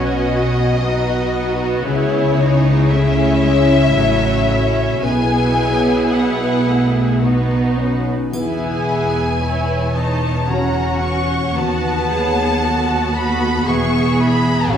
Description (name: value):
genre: classical, slow romantic movement for symphony orchestra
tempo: 56 BPM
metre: 3/4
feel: uneven beats, rubato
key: unclear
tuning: A4 = 439 Hz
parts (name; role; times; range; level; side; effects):
- warm symphonic violin section; melody; 0.0-14.8 s; C#5 to C#6; -22 LUFS; left 3 dB; none
- warm symphonic violin section; second line; 0.0-14.8 s; D#4 to F#5; -24 LUFS; right 1 dB; none
- clear symphonic viola section; accompaniment; 0.0-14.8 s; F#3 to A4; -21 LUFS; right 2 dB; none
- mellow French horn section; sustained chords; 0.0-14.8 s; A3 to G#4; -22 LUFS; equal; none
- concert harp; arpeggios; 0.0-14.8 s; A2 to C#5; -23 LUFS; left 4 dB; none
- clear symphonic cello section; bass; 0.0-14.8 s; D#2 to C#3; -23 LUFS; right 2 dB; none
- dark studio double bass section; bass; 0.0-14.8 s; E1 to D#2; -22 LUFS; right 1 dB; none
- triangle; percussion; 8.3-10.5 s; none; -41 LUFS; equal; none
room: wet recital hall reverb, RT60 1.2 s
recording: recorded in a church or concert hall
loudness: -14 LUFS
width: side -8 dB against mid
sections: 0.0-14.8 A section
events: none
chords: 0.0 B; 1.9 C#m; 3.9 F#m7/A; 5.0 Bsus4; 7.2 B; 8.3 E; 10.5 F#7/E; 11.6 B7/D#; 13.7 E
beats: 0.84 | 1.87 2.91 3.95 | 5.04 6.13 7.23 | 8.33 9.43 10.50 | 11.57 12.63 13.69 | 14.71